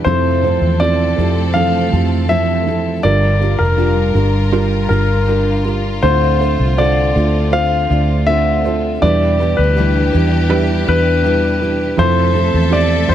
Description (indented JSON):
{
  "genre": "pop",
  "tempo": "81 BPM",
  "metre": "4/4",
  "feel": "straight",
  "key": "unclear",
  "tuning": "A4 = 440 Hz",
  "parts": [
    { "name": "warm concert grand piano", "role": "melody", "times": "0.0-13.1 s", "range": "Bb4 to F5", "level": "-18 LUFS", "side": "left 2 dB", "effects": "none" },
    { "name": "felt-muted upright piano", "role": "accompaniment", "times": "0.0-13.1 s", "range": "G2 to D5", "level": "-19 LUFS", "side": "right 6 dB", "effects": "none" },
    { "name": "warm studio string section", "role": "sustained chords", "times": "0.0-13.1 s", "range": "D3 to E5", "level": "-24 LUFS", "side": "equal", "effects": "none" },
    { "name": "fingerpicked steel-string acoustic guitar", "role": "arpeggios", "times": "0.0-13.1 s", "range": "D3 to B4", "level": "-24 LUFS", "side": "left 6 dB", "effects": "ping-pong delay" },
    { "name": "vintage muted fingered electric bass", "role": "bass", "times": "0.1-13.1 s", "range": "F1 to F2", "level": "-16 LUFS", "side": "equal", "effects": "none" }
  ],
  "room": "light reverb",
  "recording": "none",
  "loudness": "-12 LUFS",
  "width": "side -10 dB against mid",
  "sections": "0.0-13.1 A section",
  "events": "none",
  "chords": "0.1 Fmaj7; 3.0 Gm7; 6.0 Dm7; 9.0 Em7; 12.0 Fmaj7"
}